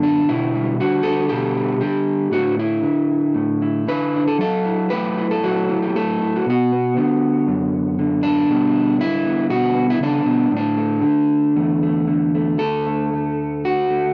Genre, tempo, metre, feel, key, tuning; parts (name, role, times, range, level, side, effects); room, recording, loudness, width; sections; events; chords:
folk, solo fingerstyle acoustic guitar; 117 BPM; 4/4; rubato; D major; A4 = 440 Hz
electric guitar at the edge of break-up; solo; 0.0-14.1 s; D2 to B4; -19 LUFS; equal
light reverb; dry, close 1970s-style studio recording; -19 LUFS; mono
0.0-12.6 A section; 12.6-14.1 B section
0.3 G/B; 2.3 Asus4; 4.4 F#m7; 6.5 Bm; 8.5 G/B; 10.5 Asus4; 12.6 D